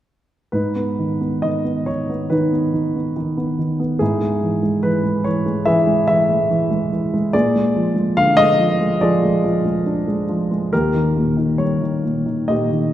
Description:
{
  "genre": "classical, lyrical solo piano",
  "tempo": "71 BPM",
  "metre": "4/4",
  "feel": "rubato",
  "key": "G# harmonic minor",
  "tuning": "A4 = 440 Hz",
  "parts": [
    { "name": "dark grand piano", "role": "solo", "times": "0.5-12.9 s", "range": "D#2 to E#5", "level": "-16 LUFS", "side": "equal", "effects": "none" }
  ],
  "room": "wet concert hall reverb, RT60 2.1 s",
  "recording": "recorded in a church or concert hall",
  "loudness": "-16 LUFS",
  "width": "side -12 dB against mid",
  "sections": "0.5-12.9 A section",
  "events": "none",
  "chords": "0.5 G#m; 4.0 E6/G#; 7.3 A#7; 10.7 D#"
}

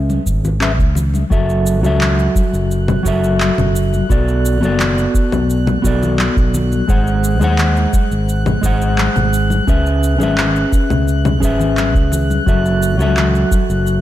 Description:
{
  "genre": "sunset chillout",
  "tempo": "86 BPM",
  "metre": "4/4",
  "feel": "straight",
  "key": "F# minor",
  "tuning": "A4 = 440 Hz",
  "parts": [
    { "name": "mellow electric guitar", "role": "accompaniment", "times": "0.0-14.0 s", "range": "F#3 to F#5", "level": "-18 LUFS", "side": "left 1 dB", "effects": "auto-pan, vintage 12-bit sampler grit, ping-pong delay" },
    { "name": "fingered electric bass", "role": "bass", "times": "0.0-14.0 s", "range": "F#1 to D#2", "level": "-16 LUFS", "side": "equal", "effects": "none" },
    { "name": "electronic cabasa, handclaps and congas", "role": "drums", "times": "0.1-14.0 s", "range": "none", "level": "-22 LUFS", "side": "left 1 dB", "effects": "none" },
    { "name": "congas", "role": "percussion", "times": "0.1-13.7 s", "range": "none", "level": "-25 LUFS", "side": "left 3 dB", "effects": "none" },
    { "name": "electronic kick drum", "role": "drums", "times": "0.3-13.7 s", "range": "none", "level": "-16 LUFS", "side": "equal", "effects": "overdrive" },
    { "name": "drifting glass-harmonics texture", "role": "texture", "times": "1.8-14.0 s", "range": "F#6", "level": "-27 LUFS", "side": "right 1 dB", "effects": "chorus, built-in reverb" }
  ],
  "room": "light reverb, digital ambience",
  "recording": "none",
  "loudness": "-13 LUFS",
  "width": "side -13 dB against mid",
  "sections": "0.0-14.0 A section",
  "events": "none",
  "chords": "0.0 C#m7; 1.3 F#m7; 4.1 Bm7; 6.9 G#7; 9.7 C#m7; 12.5 F#m7"
}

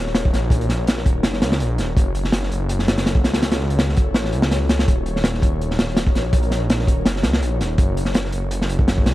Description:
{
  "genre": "drum and bass, jungle",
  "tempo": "165 BPM",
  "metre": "4/4",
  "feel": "swing 54% on 16ths",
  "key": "Eb minor",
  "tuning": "A4 = 440 Hz",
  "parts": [
    { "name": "ethereal airy pad", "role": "sustained chords", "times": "0.0-9.1 s", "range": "Eb4 to Db5", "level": "-28 LUFS", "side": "left 2 dB", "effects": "ensemble chorus, built-in reverb" },
    { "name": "detuned saw bass", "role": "bass", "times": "0.0-9.1 s", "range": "Eb1 to Db2", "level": "-22 LUFS", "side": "equal", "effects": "tube saturation" },
    { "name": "crunchy breakbeat drum kit", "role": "drums", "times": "0.1-9.1 s", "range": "hi-hat, kick drum, snare drum", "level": "-19 LUFS", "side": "equal", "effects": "none" }
  ],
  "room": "little or no reverb",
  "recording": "vinyl crackle",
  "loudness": "-17 LUFS",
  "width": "side -16 dB against mid",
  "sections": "0.0-9.1 A section",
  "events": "none",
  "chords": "0.0 Ebm7; 2.0 Gbm7; 4.9 Ebm7; 7.8 Gbm7"
}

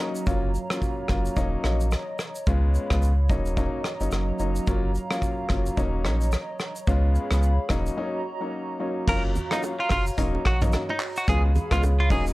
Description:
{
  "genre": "afrobeats",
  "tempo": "109 BPM",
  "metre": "4/4",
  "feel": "swing 58% on 16ths",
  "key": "F# major",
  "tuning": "A4 = 440 Hz",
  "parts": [
    { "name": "warm baby grand piano", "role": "accompaniment", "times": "0.0-12.3 s", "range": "F#3 to E#4", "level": "-30 LUFS", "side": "left 2 dB", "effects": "plate reverb" },
    { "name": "hollow soft pad", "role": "sustained chords", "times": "0.0-12.3 s", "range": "F#3 to B5", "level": "-33 LUFS", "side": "right 2 dB", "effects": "chorus, sidechain pumping, plate reverb" },
    { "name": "soft brush drum kit", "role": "drums", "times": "0.2-12.3 s", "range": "crash cymbal, handclaps, hi-hat, kick drum, rim click, shaker, toms", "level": "-28 LUFS", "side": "equal", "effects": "none" },
    { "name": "sub bass with octave", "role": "bass", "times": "0.3-12.3 s", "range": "D#1 to C#2", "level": "-23 LUFS", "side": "equal", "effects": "none" },
    { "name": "direct-recorded clean electric guitar", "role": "melody", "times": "9.1-12.2 s", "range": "D#4 to A#4", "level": "-28 LUFS", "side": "right 1 dB", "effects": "none" },
    { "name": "congas and bongos", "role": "percussion", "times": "9.1-12.3 s", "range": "none", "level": "-34 LUFS", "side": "right 4 dB", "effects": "none" }
  ],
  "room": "light reverb",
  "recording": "worn, warbling old tape, cassette tape, warbly pitch drift",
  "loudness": "-22 LUFS",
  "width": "side -19 dB against mid",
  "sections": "0.0-9.1 A section; 9.1-12.3 B section",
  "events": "break 0.0, 8.0-9.1",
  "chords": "0.3 F#maj7; 1.4 D#m7; 2.5 C#7; 3.3 D#m7; 4.7 F#maj7; 5.8 D#m7; 6.9 C#7; 7.7 D#m7; 9.1 F#maj7; 10.2 D#m7; 11.3 C#7"
}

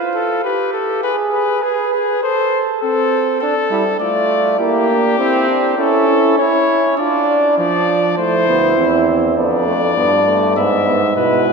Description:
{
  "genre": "classical, imitative canzona for brass ensemble",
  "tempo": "101 BPM",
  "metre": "4/4",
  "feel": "straight",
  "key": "D minor",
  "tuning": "A4 = 440 Hz",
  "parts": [
    { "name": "mellow flugelhorn", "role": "second line", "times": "0.0-11.5 s", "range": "B3 to B4", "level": "-19 LUFS", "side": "right 5 dB", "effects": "none" },
    { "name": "clear trumpet", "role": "melody", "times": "0.1-11.5 s", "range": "G4 to E5", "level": "-17 LUFS", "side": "left 4 dB", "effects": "none" },
    { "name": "clear trombone", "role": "accompaniment", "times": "3.7-11.5 s", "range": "F3 to E4", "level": "-17 LUFS", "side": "right 2 dB", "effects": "none" },
    { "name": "warm euphonium", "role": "bass", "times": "8.5-11.5 s", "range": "D2 to B2", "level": "-18 LUFS", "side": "right 2 dB", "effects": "none" }
  ],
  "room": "wet church reverb, RT60 3.8 s",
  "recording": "minimal, uncompressed stereo recording",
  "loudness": "-13 LUFS",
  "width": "side -4 dB against mid",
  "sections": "0.0-11.5 A section",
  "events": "none",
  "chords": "0.0 Fadd9; 1.0 G#m; 2.2 Am; 3.4 Dm; 4.6 Edim/Bb; 5.8 A/C#; 7.0 Dm; 8.2 Am; 9.4 Bdim/F; 10.6 E/G#"
}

